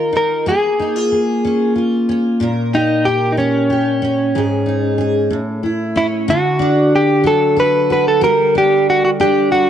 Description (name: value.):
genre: pop.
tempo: 62 BPM (dotted quarters).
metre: 6/8.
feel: straight.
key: D major from 6.3 s.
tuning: A4 = 440 Hz.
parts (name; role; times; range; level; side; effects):
direct-recorded clean electric guitar; melody; 0.0-9.7 s; Db4 to B4; -15 LUFS; equal; none.
picked steel-string acoustic guitar; accompaniment; 0.0-9.7 s; Ab2 to Bb4; -17 LUFS; equal; double-tracked left and right.
room: moderate plate reverb, RT60 2.6 s.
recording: worn, warbling old tape, cassette tape, warbly pitch drift.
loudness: -13 LUFS.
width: side -9 dB against mid.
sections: 0.0-6.3 A section; 6.3-9.7 B section.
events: none.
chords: 0.5 Bbm7; 2.4 Bbm6; 4.3 Absus4; 5.3 A; 6.3 D; 8.2 Gm.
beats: | 0.47 1.44 | 2.41 3.38 | 4.35 5.32 | 6.28 7.25 | 8.22 9.19.